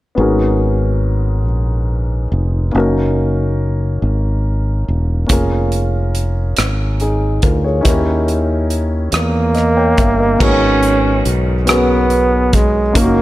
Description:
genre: slow gospel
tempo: 47 BPM (dotted quarters)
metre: 6/8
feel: straight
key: G# minor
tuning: A4 = 440 Hz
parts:
  - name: dark upright piano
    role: accompaniment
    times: 0.1-13.2 s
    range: G#2 to G5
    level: -18 LUFS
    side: left 1 dB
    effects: none
  - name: fingered electric bass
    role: bass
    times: 0.2-13.2 s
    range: E1 to E2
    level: -16 LUFS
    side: equal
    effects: none
  - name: modern studio drum kit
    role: drums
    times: 5.3-13.2 s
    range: crash cymbal, hi-hat, kick drum, rim click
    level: -17 LUFS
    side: equal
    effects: none
  - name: bright trombone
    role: melody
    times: 9.1-13.2 s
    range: G#3 to C#4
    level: -15 LUFS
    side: right 2 dB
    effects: none
room: light reverb, studio reverb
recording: none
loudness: -13 LUFS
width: side -16 dB against mid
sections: 0.2-10.4 A section; 10.4-13.2 B section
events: none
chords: 0.2 G#m11; 2.7 D#m7/F#; 5.3 A#m7/E#; 7.9 D#7b9; 10.4 G#m11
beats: | 0.18 1.46 | 2.74 4.02 | 5.30 6.58 | 7.85 9.13 | 10.40 11.68 | 12.95

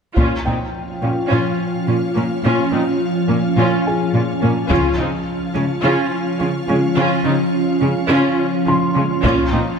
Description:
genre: cinematic, hybrid orchestral and electronic film score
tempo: 106 BPM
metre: 4/4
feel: straight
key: Bb dorian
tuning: A4 = 440 Hz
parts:
  - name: warm studio viola section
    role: accompaniment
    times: 0.2-9.6 s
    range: Ab3 to F4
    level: -21 LUFS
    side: equal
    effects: none
  - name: soft additive organ-like pad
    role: sustained chords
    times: 0.6-9.8 s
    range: F3 to F5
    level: -19 LUFS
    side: equal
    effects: ensemble chorus, built-in reverb
  - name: rich symphonic cello section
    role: bass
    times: 0.2-9.6 s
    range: Bb2 to Db3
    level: -21 LUFS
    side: right 1 dB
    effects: none
  - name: taiko ensemble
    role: drums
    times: 0.2-1.3, 4.7-5.8, 9.2-9.8 s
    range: none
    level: -22 LUFS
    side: left 1 dB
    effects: none
  - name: felt-muted upright piano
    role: texture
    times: 0.5-9.8 s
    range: Ab4 to C6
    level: -26 LUFS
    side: left 3 dB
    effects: ping-pong delay
room: moderate concert hall reverb, RT60 1.9 s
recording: none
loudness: -15 LUFS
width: side -6 dB against mid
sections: 0.2-9.8 A section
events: build-up 0.2-9.8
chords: 0.2 Bbm; 4.7 Db; 9.2 Bbm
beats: | 0.17 0.74 1.30 1.87 | 2.44 3.00 3.57 4.13 | 4.70 5.27 5.83 6.40 | 6.96 7.53 8.10 8.66 | 9.23

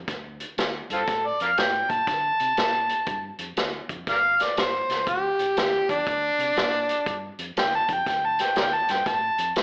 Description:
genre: electric blues shuffle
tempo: 120 BPM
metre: 4/4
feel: swing 65% on 8ths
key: D minor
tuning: A4 = 441 Hz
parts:
  - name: vintage muted fingered electric bass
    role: bass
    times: 0.0-9.6 s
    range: G1 to D3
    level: -44 LUFS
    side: equal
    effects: none
  - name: vintage drum kit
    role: drums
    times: 0.1-9.6 s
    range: hi-hat, kick drum, snare drum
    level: -31 LUFS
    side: equal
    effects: none
  - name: overdriven harmonica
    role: melody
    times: 0.9-9.6 s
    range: C4 to A5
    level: -25 LUFS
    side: equal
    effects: slapback echo
room: small room ambience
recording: live gig heard through the venue's PA, club reverb, AM radio sound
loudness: -25 LUFS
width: mono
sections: 0.0-9.6 A section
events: harmonica solo 0.0-9.6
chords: 0.0 Dm; 4.1 G5; 6.1 Dm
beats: | 0.08 0.58 1.08 1.57 | 2.07 2.57 3.07 3.57 | 4.07 4.57 5.07 5.57 | 6.07 6.57 7.07 7.57 | 8.06 8.56 9.06 9.56

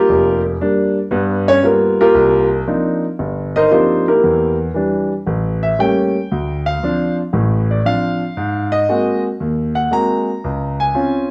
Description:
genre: solo jazz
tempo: 116 BPM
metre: 4/4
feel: swing 68% on 8ths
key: unclear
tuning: A4 = 438 Hz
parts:
  - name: warm grand piano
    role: solo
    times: 0.0-11.3 s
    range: F1 to Bb5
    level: -16 LUFS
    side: equal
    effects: none
room: wet club reverb, RT60 0.7 s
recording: heard from further back in the room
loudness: -16 LUFS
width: mono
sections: 0.0-2.1 A section; 2.1-11.3 A section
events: grand piano solo 0.0-11.3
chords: 0.0 Bb6; 1.1 G7; 2.1 Cm11; 4.2 Em7b5; 5.3 A7b9; 6.3 Dm7; 8.4 Ab9; 10.4 Dbmaj7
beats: | 0.08 0.60 1.11 1.63 | 2.15 2.67 3.19 3.70 | 4.22 4.74 5.26 5.78 | 6.29 6.81 7.33 7.85 | 8.37 8.89 9.40 9.92 | 10.44 10.96

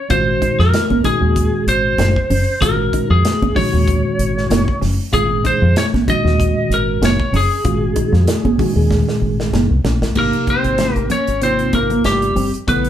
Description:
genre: electric jazz fusion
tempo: 95 BPM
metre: 4/4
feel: swing 55% on 16ths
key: Ab mixolydian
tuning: A4 = 440 Hz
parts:
  - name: lightly driven lead guitar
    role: melody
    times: 0.0-12.9 s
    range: G4 to Eb5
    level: -19 LUFS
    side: equal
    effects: none
  - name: mellow tine electric piano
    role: accompaniment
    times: 0.1-12.9 s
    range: Bb2 to A4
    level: -20 LUFS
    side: right 1 dB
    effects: fast stereo tremolo
  - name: clean electric guitar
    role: stabs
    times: 0.1-12.8 s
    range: Bb3 to F4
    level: -26 LUFS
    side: left 1 dB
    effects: none
  - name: deep dub fingered electric bass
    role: bass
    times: 0.1-12.9 s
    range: Gb1 to F2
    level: -18 LUFS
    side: equal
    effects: none
  - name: modern studio drum kit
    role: drums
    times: 0.1-12.9 s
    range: crash cymbal, hi-hat, kick drum, snare drum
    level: -22 LUFS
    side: equal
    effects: none
  - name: congas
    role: percussion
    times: 0.9-12.5 s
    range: none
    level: -22 LUFS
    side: right 4 dB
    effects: none
  - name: mellow tenor saxophone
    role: second line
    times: 10.2-12.9 s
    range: G3 to Db4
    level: -23 LUFS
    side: left 3 dB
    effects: none
room: wet studio reverb, RT60 0.9 s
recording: band playing live in one room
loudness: -13 LUFS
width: side -10 dB against mid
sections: 0.0-10.2 A section; 10.2-12.9 B section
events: drum fill 8.9-10.2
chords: 0.0 Ab7sus4; 10.2 Abmaj9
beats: | 0.10 0.73 1.36 1.99 | 2.62 3.25 3.88 4.50 | 5.13 5.76 6.39 7.02 | 7.65 8.28 8.90 9.53 | 10.16 10.79 11.42 12.05 | 12.68

